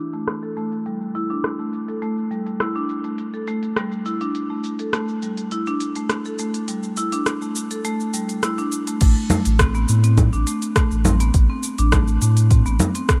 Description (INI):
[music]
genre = organic downtempo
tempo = 103 BPM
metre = 4/4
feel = straight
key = A minor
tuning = A4 = 440 Hz
[part]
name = marimba with medium hard mallets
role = arpeggios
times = 0.1-13.2 s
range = G3 to A4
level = -26 LUFS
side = equal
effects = tape echo
[part]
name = organic electronic drum kit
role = drums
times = 0.1-13.2 s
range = congas, crash cymbal, hi-hat, rim click, shaker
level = -25 LUFS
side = equal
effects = none
[part]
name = warm sub bass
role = bass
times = 9.0-12.8 s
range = A1 to A2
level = -19 LUFS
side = equal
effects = none
[part]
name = electronic kick drum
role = drums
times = 9.0-13.2 s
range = none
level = -20 LUFS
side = equal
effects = none
[sound]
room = little or no reverb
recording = low-pass filter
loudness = -21 LUFS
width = mono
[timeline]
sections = 0.0-9.0 A section; 9.0-13.2 B section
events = filter sweep on marimba 0.0-9.0; filter sweep 0.0-9.0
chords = 0.0 N.C.; 9.0 Am